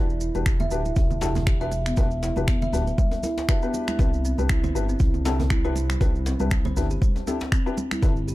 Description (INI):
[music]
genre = afro house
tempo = 119 BPM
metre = 4/4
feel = swing 56% on 16ths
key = unclear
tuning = A4 = 441 Hz
[part]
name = kalimba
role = arpeggios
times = 0.0-8.3 s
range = G3 to E5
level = -29 LUFS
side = right 1 dB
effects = sidechain pumping, ping-pong delay
[part]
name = felt-muted upright piano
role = stabs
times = 0.0-8.1 s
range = D4 to B4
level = -32 LUFS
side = left 5 dB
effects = sidechain pumping, ping-pong delay
[part]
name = smooth gliding synth bass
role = bass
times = 0.0-8.3 s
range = D1 to C2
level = -26 LUFS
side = equal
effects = sidechain pumping
[part]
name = maracas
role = percussion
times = 0.1-8.3 s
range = none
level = -42 LUFS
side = right 3 dB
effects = none
[part]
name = congas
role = percussion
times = 0.3-8.1 s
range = none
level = -33 LUFS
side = right 3 dB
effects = none
[part]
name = electronic finger snaps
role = drums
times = 0.5-8.0 s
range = none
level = -32 LUFS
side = equal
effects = none
[part]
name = electronic kick drum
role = drums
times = 0.5-8.1 s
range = none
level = -22 LUFS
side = equal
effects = none
[part]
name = djembe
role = percussion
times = 1.0-8.1 s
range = none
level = -33 LUFS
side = left 1 dB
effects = none
[sound]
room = small room reverb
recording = dark, warm production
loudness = -21 LUFS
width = side -17 dB against mid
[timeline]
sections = 0.0-8.3 A section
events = none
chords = 0.0 Em7; 4.0 Cmaj7